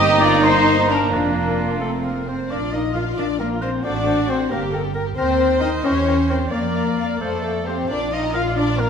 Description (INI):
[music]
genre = quick classical-period movement for symphony orchestra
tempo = 89 BPM (dotted quarters)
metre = 6/8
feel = straight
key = Bb major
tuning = A4 = 439 Hz
[part]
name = warm chamber violin section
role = melody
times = 0.0-8.9 s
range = Bb3 to Bb5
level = -29 LUFS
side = left 3 dB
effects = none
[part]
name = bright clarinet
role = second line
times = 0.0-8.4 s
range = C4 to D5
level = -30 LUFS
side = left 2 dB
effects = none
[part]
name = mellow oboe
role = second line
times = 0.0-8.9 s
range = A4 to Bb5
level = -28 LUFS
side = right 1 dB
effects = none
[part]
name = silver concert flute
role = second line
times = 0.0-8.5 s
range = F5 to Eb6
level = -29 LUFS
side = left 1 dB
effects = none
[part]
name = warm chamber violin section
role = second line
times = 0.0-8.9 s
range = Bb3 to F5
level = -29 LUFS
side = left 5 dB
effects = none
[part]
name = warm chamber viola section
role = accompaniment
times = 0.0-8.9 s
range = A3 to D5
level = -27 LUFS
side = right 2 dB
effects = none
[part]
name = clear French horn section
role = sustained chords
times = 0.0-8.9 s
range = A3 to F4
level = -23 LUFS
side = left 5 dB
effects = none
[part]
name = dark trumpet section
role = stabs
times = 0.0-2.2 s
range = F4 to Eb5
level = -21 LUFS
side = right 3 dB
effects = none
[part]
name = warm chamber cello section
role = bass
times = 0.0-8.9 s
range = F2 to F4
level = -27 LUFS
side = right 4 dB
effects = none
[part]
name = warm studio double bass section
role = bass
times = 0.0-8.9 s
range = F1 to F2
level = -26 LUFS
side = right 4 dB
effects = none
[sound]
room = wet scoring stage reverb, RT60 1.6 s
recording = none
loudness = -17 LUFS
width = side -7 dB against mid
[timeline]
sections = 0.0-2.5 A section; 2.5-8.9 B section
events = none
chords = 0.0 Eb/G; 1.1 Bb/F; 1.8 F; 2.5 Bb; 3.8 D7/A; 4.5 Gm; 5.2 Cm7/Eb; 5.8 Edim7; 6.5 Bb/F; 7.2 F; 7.9 Bb